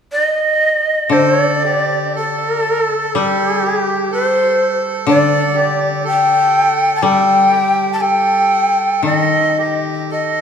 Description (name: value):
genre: japanese traditional, Japanese chamber music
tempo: 56-64 BPM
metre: 2/4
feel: rubato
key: D in sen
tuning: A4 = 439 Hz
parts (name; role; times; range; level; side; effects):
- breathy bright shakuhachi; melody; 0.1-10.4 s; G4 to A5; -14 LUFS; equal; none
- melodica; second line; 1.1-10.4 s; G4 to A4; -20 LUFS; right 4 dB; none
- koto; accompaniment; 1.1-10.4 s; D3 to G3; -20 LUFS; left 4 dB; none
room: wet church reverb, RT60 3.2 s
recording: small room ambience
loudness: -12 LUFS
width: side -7 dB against mid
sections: 0.0-1.1 A section; 1.1-10.4 B section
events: none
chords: none